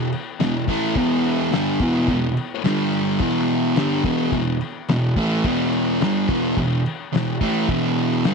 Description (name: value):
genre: garage rock duo or trio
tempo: 107 BPM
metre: 4/4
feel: straight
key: E minor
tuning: A4 = 440 Hz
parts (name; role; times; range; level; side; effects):
- thick fuzz guitar; riff; 0.0-8.3 s; E2 to A3; -19 LUFS; equal; distortion
- cloth-damped thuddy drum kit; drums; 0.1-8.3 s; crash cymbal, kick drum, snare drum; -27 LUFS; left 4 dB; vintage 12-bit sampler grit
room: light reverb, small room reverb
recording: 1960s-style stereo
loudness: -18 LUFS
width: side -4 dB against mid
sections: 0.0-8.3 A section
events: none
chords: 0.0 Em; 2.6 G5; 3.2 Em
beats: 0.40 | 0.96 1.52 2.08 2.65 | 3.21 3.77 4.33 4.89 | 5.45 6.01 6.57 7.13 | 7.69 8.25